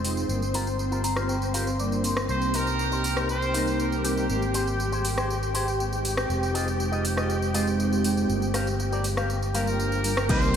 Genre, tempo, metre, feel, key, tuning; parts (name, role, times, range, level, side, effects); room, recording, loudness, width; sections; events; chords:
nu-disco, nu disco; 120 BPM; 4/4; straight; A4 = 438 Hz
mellow synth brass; accompaniment; 0.0-10.6 s; G3 to C5; -29 LUFS; right 1 dB; chorus, cassette tape, sidechain pumping, ping-pong delay
lush unison pad; sustained chords; 0.0-10.6 s; C4 to G5; -31 LUFS; equal; chorus, sidechain pumping
fingered electric bass with an envelope filter; bass; 0.0-10.6 s; F1 to C2; -29 LUFS; equal; sidechain pumping
house drum kit; drums; 0.0-10.6 s; hi-hat, rim click, tambourine; -32 LUFS; equal; overdrive
electric guitar with an envelope filter; riff; 0.5-10.5 s; Eb4 to Bb5; -34 LUFS; left 2 dB; wide subtle chorus, low-pass filter, ping-pong delay
clear trumpet section; melody; 2.3-5.0, 9.6-10.6 s; G4 to C5; -31 LUFS; equal; diffuse ambient delay
electronic kick drum; drums; 10.3-10.4 s; -24 LUFS; equal; overdrive
downlifter; sound effects; 10.3-10.6 s; -33 LUFS; right 3 dB
wet cathedral reverb, RT60 5.7 s; dreamy mix soaked in reverb; -23 LUFS; side -8 dB against mid
0.0-10.3 A section
clean electric guitar fill 0.8-2.3
0.3 Gm7; 2.3 Cm7; 4.3 Abmaj7; 6.3 Fm7; 8.3 Gm7